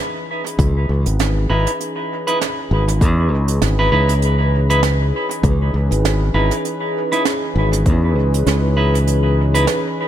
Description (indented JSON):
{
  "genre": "ambient dub",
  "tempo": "99 BPM",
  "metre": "4/4",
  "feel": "swing 57% on 16ths",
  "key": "C# minor",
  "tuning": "A4 = 440 Hz",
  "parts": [
    { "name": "warm analog pad", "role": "sustained chords", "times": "0.0-10.1 s", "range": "E3 to B4", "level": "-23 LUFS", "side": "equal", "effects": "chorus" },
    { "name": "soft brush drum kit", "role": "drums", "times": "0.5-9.8 s", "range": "hi-hat, snare drum", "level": "-25 LUFS", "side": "right 7 dB", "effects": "dub echo" },
    { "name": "modern bright fingered electric bass", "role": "bass", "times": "0.6-9.7 s", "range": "G#1 to E2", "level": "-16 LUFS", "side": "equal", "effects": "none" },
    { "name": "electronic kick drum", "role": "drums", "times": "0.6-8.0 s", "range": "none", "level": "-18 LUFS", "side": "equal", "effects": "overdrive" },
    { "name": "clean electric guitar", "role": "stabs", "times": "1.5-9.7 s", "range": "D#4 to B4", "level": "-22 LUFS", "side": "right 1 dB", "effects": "dub echo" }
  ],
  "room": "light reverb, small room ambience",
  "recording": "none",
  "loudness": "-15 LUFS",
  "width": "side -11 dB against mid",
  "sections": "0.0-10.1 A section",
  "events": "fade-in on analog synth pad 0.0-10.1",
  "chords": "0.0 C#m9"
}